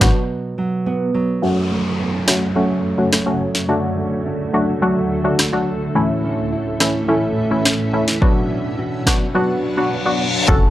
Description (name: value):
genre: dancehall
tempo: 106 BPM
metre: 4/4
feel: straight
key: unclear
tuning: A4 = 441 Hz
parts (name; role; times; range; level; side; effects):
- wavetable chord stab; accompaniment; 0.0-10.7 s; E3 to A4; -19 LUFS; left 1 dB; low-pass filter
- nylon-string guitar; arpeggios; 0.0-10.7 s; F#2 to F#4; -22 LUFS; right 2 dB; low-pass filter
- plucky analog bass; bass; 0.0-0.1, 10.5-10.7 s; F#1 to A1; -16 LUFS; equal; none
- afro-pop drum kit; drums; 0.0-10.6 s; hi-hat, kick drum, rim click, snare drum; -16 LUFS; equal; none
- bongos; percussion; 0.0-0.1, 10.5-10.6 s; none; -28 LUFS; left 2 dB; none
- granular cloud pad; sustained chords; 2.4-10.5 s; D2 to F#5; -25 LUFS; left 1 dB; built-in reverb, sidechain pumping, low-pass filter
- downlifter, reverse cymbal and impact; sound effects; 1.4-10.7 s; none; -25 LUFS; left 2 dB; none
room: little or no reverb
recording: dry, gritty hardware recording, cassette tape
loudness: -16 LUFS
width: side -14 dB against mid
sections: 0.0-1.4 A section; 1.4-10.5 B section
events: break 0.3-1.4; filter sweep 1.4-10.5; reverse cymbal 9.8-10.5; impact 10.5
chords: 0.0 Bm; 1.4 F#m; 3.7 D; 6.0 A; 8.2 Bm